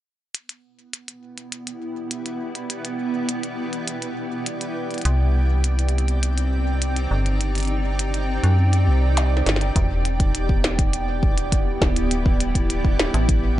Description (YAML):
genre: IDM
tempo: 102 BPM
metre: 4/4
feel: straight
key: E minor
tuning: A4 = 440 Hz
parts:
  - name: granular cloud pad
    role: sustained chords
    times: 1.3-13.6 s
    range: B3 to G5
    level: -26 LUFS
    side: right 1 dB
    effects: built-in reverb
  - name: glitchy drum kit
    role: drums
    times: 0.3-13.4 s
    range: hi-hat, snare drum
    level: -25 LUFS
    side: equal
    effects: none
  - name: metallic FM bass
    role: bass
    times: 5.1-13.6 s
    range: D1 to F#2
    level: -21 LUFS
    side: equal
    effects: none
  - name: electronic kick drum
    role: drums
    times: 9.8-13.4 s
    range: none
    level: -20 LUFS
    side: equal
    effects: none
room: digital ambience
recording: nothing above 11.0 kHz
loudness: -19 LUFS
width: side -14 dB against mid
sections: 0.3-9.8 A section; 9.8-13.6 B section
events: drum fill 9.2-9.8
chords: 0.3 Em7; 5.1 Cmadd9; 9.8 Em7